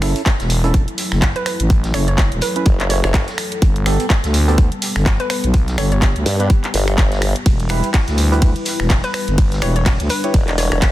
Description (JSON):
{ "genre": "bass house", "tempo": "125 BPM", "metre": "4/4", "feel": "swing 58% on 16ths", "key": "F# phrygian", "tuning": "A4 = 441 Hz", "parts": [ { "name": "dark analog pad", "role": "sustained chords", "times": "0.0-10.9 s", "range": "F#3 to B4", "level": "-27 LUFS", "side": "left 2 dB", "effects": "chorus, sidechain pumping" }, { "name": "percussive organ stab", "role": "stabs", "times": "0.0-10.3 s", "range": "B3 to C#5", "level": "-26 LUFS", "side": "right 4 dB", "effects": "wide subtle chorus, sidechain pumping, digital delay" }, { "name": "growling FM bass", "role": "bass", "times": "0.0-10.1 s", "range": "E1 to D2", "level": "-17 LUFS", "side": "equal", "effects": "overdrive, sidechain pumping" }, { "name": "garage drum kit", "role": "drums", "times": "0.0-10.9 s", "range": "finger snaps, handclaps, hi-hat, ride cymbal", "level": "-23 LUFS", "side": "equal", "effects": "studio reverb, soft clipping on snare" }, { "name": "warm soul drum kit", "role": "drums", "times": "0.0-10.9 s", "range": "hi-hat, snare drum", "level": "-34 LUFS", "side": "equal", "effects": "none" }, { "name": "electronic kick drum", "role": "drums", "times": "0.3-10.9 s", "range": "none", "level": "-14 LUFS", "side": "equal", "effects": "studio reverb" }, { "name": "hollow square pluck", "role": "melody", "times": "1.4-6.0, 9.0-10.8 s", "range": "B4 to C#5", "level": "-26 LUFS", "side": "left 1 dB", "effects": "chorus, digital delay" }, { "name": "formant-sweep wobble bass", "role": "bass", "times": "2.7-3.3, 6.3-7.3, 10.3-10.9 s", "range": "E1 to G2", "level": "-18 LUFS", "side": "equal", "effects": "chorus, overdrive, sidechain pumping" } ], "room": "little or no reverb", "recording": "dense, heavily limited modern master", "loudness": "-14 LUFS", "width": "side -15 dB against mid", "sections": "0.0-10.9 A section", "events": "none", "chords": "0.0 F#m7; 3.6 Gadd9; 7.5 Em" }